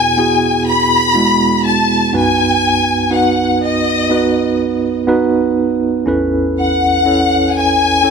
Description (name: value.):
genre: pop.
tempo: 61 BPM.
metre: 4/4.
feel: straight.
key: unclear.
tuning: A4 = 438 Hz.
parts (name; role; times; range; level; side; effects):
warm symphonic violin section; melody; 0.0-8.1 s; D#5 to B5; -14 LUFS; left 3 dB; none.
tine electric piano; accompaniment; 0.0-8.1 s; A1 to C#5; -14 LUFS; right 3 dB; medium tremolo.
room: light reverb, studio ambience.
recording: none.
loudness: -12 LUFS.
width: side -5 dB against mid.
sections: 0.0-8.1 A section.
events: none.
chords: 0.0 Eadd9; 2.1 B; 6.1 Aadd9.